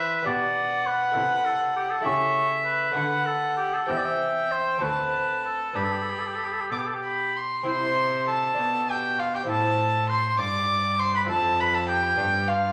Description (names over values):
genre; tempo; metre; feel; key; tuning
classical, baroque-style sonata movement with continuo; 63-68 BPM (dotted quarters); 6/8; rubato; G major, C major from 7.7 s; A4 = 440 Hz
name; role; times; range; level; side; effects
warm oboe; melody; 0.0-12.7 s; F4 to E5; -30 LUFS; equal; none
rich violin; second line; 0.0-12.7 s; E5 to D6; -28 LUFS; equal; none
lute; accompaniment; 0.0-12.7 s; D2 to A4; -35 LUFS; equal; none
rich cello; bass; 0.0-12.7 s; D2 to D3; -36 LUFS; equal; none
room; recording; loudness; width
wet recital hall reverb, RT60 1.3 s; vinyl crackle; -25 LUFS; mono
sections
0.0-7.7 A section; 7.7-12.7 A section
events
none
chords
0.3 G/B; 1.2 Am/C; 2.1 A7/C#; 3.0 D; 3.9 C/E; 4.8 D7; 5.8 G; 7.7 C; 8.6 G9/B; 9.5 Am; 11.3 F5; 12.2 G